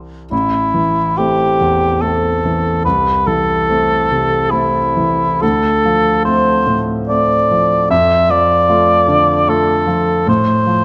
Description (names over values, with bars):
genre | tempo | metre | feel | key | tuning
classical, romantic duo for cor anglais and grand piano | 63-78 BPM | 3/4 | rubato | A minor | A4 = 440 Hz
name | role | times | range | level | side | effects
clear grand piano | accompaniment | 0.0-10.8 s | A1 to F4 | -19 LUFS | equal | none
mellow cor anglais | melody | 0.3-10.8 s | E4 to E5 | -16 LUFS | equal | none
room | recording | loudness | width
moderate recital hall reverb, RT60 1.5 s | close, detailed microphones | -14 LUFS | mono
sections
0.3-10.8 A section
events
none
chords
0.3 Am; 2.8 Am/C; 5.4 Dm7; 7.9 Dm/F; 10.3 F/A